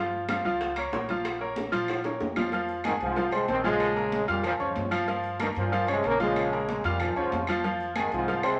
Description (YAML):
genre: latin, salsa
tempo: 188 BPM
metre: 4/4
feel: straight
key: unclear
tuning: A4 = 440 Hz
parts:
  - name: bright upright piano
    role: accompaniment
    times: 0.0-8.6 s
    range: F3 to F6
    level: -31 LUFS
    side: equal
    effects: none
  - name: upright bass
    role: bass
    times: 0.0-8.6 s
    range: Bb1 to Bb2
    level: -40 LUFS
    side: equal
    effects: none
  - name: congas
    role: percussion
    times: 0.1-8.6 s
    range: none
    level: -41 LUFS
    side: equal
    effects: none
  - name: bongos and cowbell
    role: percussion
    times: 0.3-8.4 s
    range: none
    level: -41 LUFS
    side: equal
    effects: none
  - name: claves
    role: percussion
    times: 0.3-8.6 s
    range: none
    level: -41 LUFS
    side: equal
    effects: none
  - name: timbales and agogo bells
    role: percussion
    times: 0.3-8.6 s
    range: none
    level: -40 LUFS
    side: equal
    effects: none
  - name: bright trombone section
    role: melody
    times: 2.9-8.6 s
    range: G2 to C4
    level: -30 LUFS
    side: equal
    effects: none
room: wet studio reverb, RT60 0.8 s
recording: none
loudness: -28 LUFS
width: mono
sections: 0.0-2.5 A section; 2.5-8.6 B section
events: drum fill 1.9-2.5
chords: 0.0 Bbm; 2.5 Fm; 3.8 Bbm; 7.6 Fm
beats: 0.29 0.61 0.93 | 1.25 1.57 1.89 2.21 | 2.53 2.85 3.17 3.48 | 3.81 4.12 4.44 4.76 | 5.08 5.40 5.72 6.04 | 6.36 6.68 7.00 7.32 | 7.64 7.96 8.28 8.60